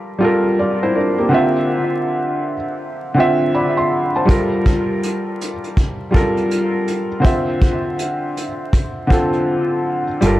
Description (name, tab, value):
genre	lo-fi hip hop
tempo	81 BPM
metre	4/4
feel	swing 60% on 16ths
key	unclear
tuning	A4 = 440 Hz
part	felt-muted upright piano	accompaniment	0.0-10.4 s	D3 to C6	-16 LUFS	equal	cassette tape, low-pass filter, analog delay
part	vintage brush drum kit	drums	4.3-10.4 s	hi-hat, kick drum	-18 LUFS	equal	none
part	deep dub picked electric bass	bass	10.2-10.4 s	G1	-17 LUFS	equal	none
room	moderate spring reverb, RT60 2.3 s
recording	echo-heavy mix, vinyl crackle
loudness	-15 LUFS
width	side -15 dB against mid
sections	0.0-10.2 A section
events	break 9.5-10.2; kick muted 10.2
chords	0.0 Gm9; 1.3 Dm9; 4.3 Gm9; 7.2 Dm9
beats	0.58 | 1.32 2.06 2.81 3.55 | 4.29 5.03 5.77 6.51 | 7.25 7.99 8.73 9.47 | 10.21